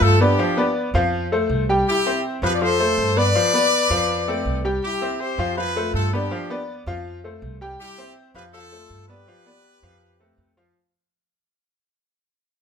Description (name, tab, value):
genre	latin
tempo	162 BPM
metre	4/4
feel	straight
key	unclear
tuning	A4 = 440 Hz
part	brilliant horn section	melody	0.0-10.5 s	D4 to D5	-21 LUFS	left 2 dB	none
part	bright concert grand piano	accompaniment	0.0-10.7 s	F3 to G5	-23 LUFS	left 1 dB	none
part	upright bass	bass	0.0-10.7 s	C2 to G2	-24 LUFS	right 1 dB	none
room	moderate large studio reverb, RT60 1.1 s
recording	minimal, uncompressed stereo recording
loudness	-18 LUFS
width	side -7 dB against mid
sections	0.0-10.8 A section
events	fade-out 0.0-10.8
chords	0.4 G7; 1.1 F; 1.9 C; 2.6 F; 3.4 Bdim/F; 4.1 F; 4.8 C; 5.6 F; 6.3 G7; 7.1 F; 7.8 C; 8.5 F; 9.3 G7; 10.0 F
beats	0.02 | 0.39 0.76 1.13 1.50 | 1.87 2.24 2.61 2.98 | 3.35 3.72 4.09 4.46 | 4.83 5.20 5.57 5.95 | 6.32 6.68 7.06 7.43 | 7.80 8.17 8.54 8.91 | 9.28 9.65 10.02 10.38